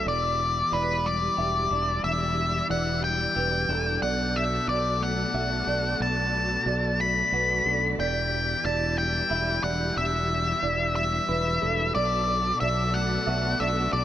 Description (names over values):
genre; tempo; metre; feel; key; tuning
post-rock; 61 BPM (dotted quarters); 6/8; straight; E minor; A4 = 440 Hz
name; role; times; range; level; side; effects
octave-fuzz lead guitar; melody; 0.0-14.0 s; B4 to B5; -26 LUFS; left 2 dB; distortion, analog delay
dark chamber string section; sustained chords; 0.0-14.0 s; E3 to D5; -36 LUFS; right 1 dB; none
clean electric guitar; arpeggios; 0.0-14.0 s; E2 to G4; -33 LUFS; left 3 dB; lush chorus, analog delay
felt-muted upright piano; arpeggios; 0.0-14.0 s; A4 to E5; -34 LUFS; right 6 dB; analog delay
fingered electric bass; bass; 0.0-14.0 s; E1 to B1; -30 LUFS; right 1 dB; none
room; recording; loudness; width
light reverb, small room ambience; none; -23 LUFS; side -12 dB against mid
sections
0.1-14.0 A section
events
none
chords
0.1 Em7; 4.0 Bm7; 8.0 Em7; 12.0 Bm7